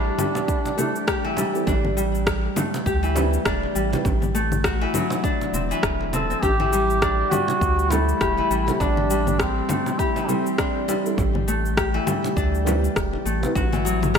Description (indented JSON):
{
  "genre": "organic downtempo",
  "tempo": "101 BPM",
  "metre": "4/4",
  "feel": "swing 58% on 16ths",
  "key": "A dorian",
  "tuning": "A4 = 436 Hz",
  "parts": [
    { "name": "mellow duduk", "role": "melody", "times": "0.0-1.4, 6.1-10.9 s", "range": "C4 to A4", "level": "-25 LUFS", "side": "equal", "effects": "ping-pong delay, shimmer reverb" },
    { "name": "Celtic harp", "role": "arpeggios", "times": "0.0-14.2 s", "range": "E3 to G4", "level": "-24 LUFS", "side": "left 2 dB", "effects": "ping-pong delay, shimmer reverb" },
    { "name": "round analog bass", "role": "bass", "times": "0.0-14.2 s", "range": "E1 to D2", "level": "-25 LUFS", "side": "equal", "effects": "none" },
    { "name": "electronic congas, cabasa and rim click", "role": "drums", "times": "0.2-14.2 s", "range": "none", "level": "-28 LUFS", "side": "left 2 dB", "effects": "overdrive" },
    { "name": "congas", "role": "percussion", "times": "0.2-14.1 s", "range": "none", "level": "-32 LUFS", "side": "right 4 dB", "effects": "none" },
    { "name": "electronic kick drum", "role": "drums", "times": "0.5-14.2 s", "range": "none", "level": "-27 LUFS", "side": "equal", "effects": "overdrive" },
    { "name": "felt-muted upright piano", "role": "accompaniment", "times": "0.8-4.0, 7.9-13.5 s", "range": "G3 to B4", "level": "-31 LUFS", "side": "right 3 dB", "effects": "lush chorus, sidechain pumping, ping-pong delay, shimmer reverb" }
  ],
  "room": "moderate plate reverb, RT60 2.0 s, small room ambience",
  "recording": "bright 1980s-style digital production",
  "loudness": "-20 LUFS",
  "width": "side -7 dB against mid",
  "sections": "0.0-14.2 A section",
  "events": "none",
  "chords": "0.0 Am7; 1.7 C/A (rootless); 4.0 D7/A; 6.4 Am7; 11.2 C/A (rootless); 13.6 D/A"
}